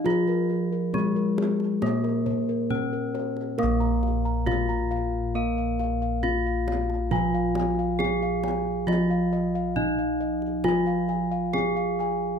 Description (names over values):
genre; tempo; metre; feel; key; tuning
Javanese gamelan; 68 BPM; 4/4; straight; Bb slendro; A4 = 440 Hz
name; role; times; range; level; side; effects
gamelan-type bronze metallophone; melody; 0.0-12.4 s; Ab3-25c to Bb4; -28 LUFS; left 2 dB; none
gamelan-type bronze metallophone; accompaniment; 0.0-12.4 s; F3 to Bb3; -30 LUFS; right 7 dB; none
gamelan-type bossed gongs; bass; 0.0-12.4 s; Bb1 to Bb4; -29 LUFS; left 2 dB; none
gamelan-type bossed gongs; arpeggios; 0.1-12.3 s; Ab4-25c to Bb5; -31 LUFS; left 6 dB; none
kendang; percussion; 0.1-12.1 s; none; -35 LUFS; right 3 dB; none
room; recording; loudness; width
light reverb; close, detailed microphones; -23 LUFS; side -6 dB against mid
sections
0.0-12.4 A section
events
none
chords
none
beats
| 0.05 0.94 1.82 2.70 | 3.58 4.47 5.35 6.23 | 7.11 8.00 8.88 9.76 | 10.64 11.53